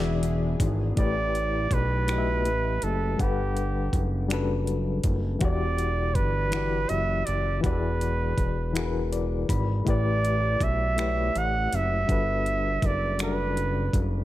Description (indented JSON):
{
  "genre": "slow six-eight R&B",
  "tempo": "54 BPM (dotted quarters)",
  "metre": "6/8",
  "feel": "straight",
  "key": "unclear",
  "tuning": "A4 = 436 Hz",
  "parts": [
    { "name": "warm flugelhorn", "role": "melody", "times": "0.0-14.0 s", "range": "G4 to F#5", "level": "-29 LUFS", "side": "right 4 dB", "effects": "none" },
    { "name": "overdriven reed electric piano", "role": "accompaniment", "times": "0.0-14.2 s", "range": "E3 to B5", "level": "-30 LUFS", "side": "left 6 dB", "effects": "tremolo" },
    { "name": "lush unison pad", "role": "sustained chords", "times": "0.0-1.0 s", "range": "E3 to G#4", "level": "-40 LUFS", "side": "equal", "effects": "chorus" },
    { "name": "fat analog bass", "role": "bass", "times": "0.0-14.2 s", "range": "E1 to B1", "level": "-27 LUFS", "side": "equal", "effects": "none" },
    { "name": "smooth R&B drum kit", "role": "drums", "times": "0.2-14.1 s", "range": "finger snaps, hi-hat, kick drum", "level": "-28 LUFS", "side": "equal", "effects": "none" }
  ],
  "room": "little or no reverb",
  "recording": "none",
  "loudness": "-23 LUFS",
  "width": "side -15 dB against mid",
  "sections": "1.0-14.2 A section",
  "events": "reed electric piano fill 8.8-9.9",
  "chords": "0.0 E7; 1.0 A7sus4; 3.2 Gmaj7; 5.4 Em9; 7.6 E7; 9.9 A7sus4; 12.1 Gmaj7"
}